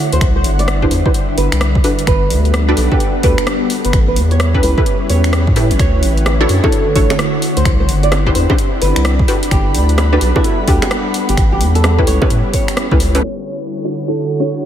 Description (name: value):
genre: UK garage, two-step garage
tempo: 129 BPM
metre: 4/4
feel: swing 63% on 16ths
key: D major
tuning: A4 = 440 Hz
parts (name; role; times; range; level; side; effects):
- soft string machine; sustained chords; 0.0-14.7 s; D3 to F#5; -24 LUFS; equal; ensemble chorus, sidechain pumping
- punchy chord stab; stabs; 0.0-14.7 s; C#4 to C#5; -21 LUFS; left 1 dB; chorus, ping-pong delay
- ethereal airy pad; texture; 0.0-14.7 s; D3 to B5; -23 LUFS; equal; ensemble chorus, built-in reverb, sidechain pumping
- flamenco guitar; melody; 0.1-14.6 s; E4 to D5; -22 LUFS; right 2 dB; analog chorus, ping-pong delay
- saturated sub bass; bass; 0.1-13.2 s; G1 to A2; -14 LUFS; equal; none
- house drum kit; drums; 0.1-14.7 s; bongos, finger snaps, hi-hat, rim click, shaker; -21 LUFS; equal; studio reverb
- electronic kick drum; drums; 0.2-13.0 s; none; -16 LUFS; equal; studio reverb
room: light reverb, digital ambience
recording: low-pass filter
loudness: -11 LUFS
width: side -10 dB against mid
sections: 0.0-13.2 A section; 13.2-14.7 B section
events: filter sweep on synth stab 13.2-14.7; filter sweep 13.2-14.7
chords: 0.2 Cmaj9; 1.8 Gmaj7; 3.9 A9; 5.8 Dmaj7; 7.7 Cmaj9; 9.3 Gmaj7; 11.4 A9; 13.2 Dmaj7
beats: | 0.21 0.68 1.14 1.61 | 2.07 2.54 3.00 3.47 | 3.93 4.40 4.86 5.33 | 5.79 6.26 6.72 7.19 | 7.65 8.12 8.58 9.05 | 9.51 9.98 10.45 10.91 | 11.38 11.84 12.30 12.77 | 13.23 13.70 14.17 14.63